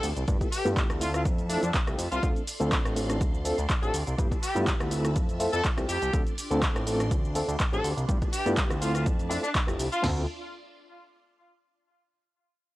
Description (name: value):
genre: filtered disco house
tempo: 123 BPM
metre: 4/4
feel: swing 54% on 16ths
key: D dorian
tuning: A4 = 439 Hz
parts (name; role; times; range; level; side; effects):
- bright horn section; melody; 0.0-10.0 s; D4 to A4; -32 LUFS; left 1 dB; sidechain pumping
- reed electric piano; accompaniment; 0.0-10.2 s; A3 to A4; -31 LUFS; equal; overdrive, fast tremolo, phaser, sidechain pumping
- phased string machine; sustained chords; 0.0-10.3 s; D4 to C6; -41 LUFS; left 1 dB; ensemble chorus, phaser, sidechain pumping
- fat analog bass; bass; 0.0-10.3 s; F1 to G2; -30 LUFS; equal; tube saturation, sidechain pumping
- punchy analog drum machine; drums; 0.0-10.0 s; handclaps, hi-hat, rim click, shaker; -33 LUFS; equal; sidechain pumping on hats, sidechain pumping on perc
- punchy analog drum machine; drums; 0.3-10.2 s; crash cymbal, kick drum, snare drum, toms; -28 LUFS; equal; none
room: digital ambience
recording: dry, gritty hardware recording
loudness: -25 LUFS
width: side -17 dB against mid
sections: 0.0-10.0 A section; 10.0-12.0 B section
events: drop 0.0-10.0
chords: 0.3 G13; 1.3 Fmaj7; 2.2 Dm7; 4.2 G13; 5.2 Fmaj7; 6.1 Dm7; 8.1 G13; 9.1 Fmaj7; 10.0 Dm7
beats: | 0.28 0.77 1.25 1.74 | 2.23 2.72 3.21 3.69 | 4.18 4.67 5.16 5.64 | 6.13 6.62 7.11 7.60 | 8.08 8.57 9.06 9.55 | 10.04